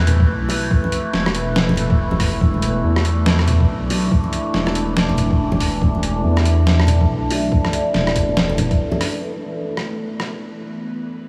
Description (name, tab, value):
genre	deep dubstep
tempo	141 BPM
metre	4/4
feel	swing 60% on 16ths, half-time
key	unclear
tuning	A4 = 440 Hz
part	overtone-sweeping drone	sustained chords	0.0-11.3 s	E3 to B4	-25 LUFS	equal	chorus, built-in reverb
part	dark detuned saw bass	bass	0.0-8.8 s	E1 to E2	-21 LUFS	equal	none
part	trip hop sampler-style drum kit	drums	0.1-10.3 s	hi-hat, rim click, snare drum	-26 LUFS	equal	overdrive, studio ambience
part	congas and bongos	percussion	0.1-9.0 s	none	-29 LUFS	equal	dub echo
part	electronic kick drum	drums	0.2-8.8 s	none	-21 LUFS	equal	overdrive, studio ambience
room	moderate huge ambient reverb, RT60 6.4 s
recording	dreamy mix soaked in reverb, small room ambience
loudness	-18 LUFS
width	mono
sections	0.0-9.2 A section; 9.2-11.3 B section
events	drop 0.0-9.2; break 8.8-9.2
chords	0.0 E5